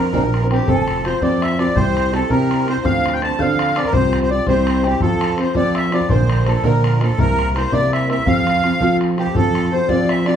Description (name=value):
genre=celtic folk, Celtic jig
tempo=111 BPM (dotted quarters)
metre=6/8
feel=straight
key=F major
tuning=A4 = 440 Hz
part: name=accordion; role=melody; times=0.0-10.4 s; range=G4 to A5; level=-21 LUFS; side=equal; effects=light tremolo tuning, plate reverb
part: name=mellow hollow mid whistle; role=second line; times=0.0-9.0 s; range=G5 to A6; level=-26 LUFS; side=left 3 dB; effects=none
part: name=fingerpicked steel-string acoustic guitar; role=accompaniment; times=0.0-10.4 s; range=Bb2 to Bb4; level=-20 LUFS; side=right 1 dB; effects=none
part: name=overdriven picked electric bass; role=bass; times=0.0-10.3 s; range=F1 to F3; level=-20 LUFS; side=equal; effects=none
part: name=bodhran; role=percussion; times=0.1-10.3 s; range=none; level=-24 LUFS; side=left 2 dB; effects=none
room=wet small room reverb, RT60 0.5 s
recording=heard from further back in the room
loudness=-15 LUFS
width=side -8 dB against mid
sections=0.7-9.4 A section; 9.4-10.4 A section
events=none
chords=0.0 Bbadd9; 0.7 F; 1.8 C; 2.8 Dm7; 3.9 Csus4; 4.5 C; 5.0 F; 6.1 Bb; 7.2 C7; 8.3 F